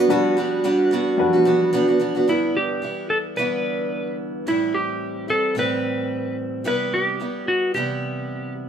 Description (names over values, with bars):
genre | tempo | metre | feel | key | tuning
pop | 110 BPM | 4/4 | swing 55% on 16ths | G major | A4 = 437 Hz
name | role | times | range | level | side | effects
picked acoustic archtop guitar | accompaniment | 0.0-8.7 s | G2 to F#4 | -21 LUFS | right 2 dB | none
warm upright piano | accompaniment | 0.0-2.3 s | G3 to F#5 | -24 LUFS | left 5 dB | none
clean lap steel guitar | melody | 2.3-8.5 s | E4 to B4 | -23 LUFS | equal | none
room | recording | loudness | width
wet studio reverb, RT60 0.6 s | band playing live in one room | -19 LUFS | side -8 dB against mid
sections
0.1-2.3 A section; 2.3-8.7 B section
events
none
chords
0.1 Gmaj7; 2.3 G6; 4.5 Am7; 6.7 Cmaj7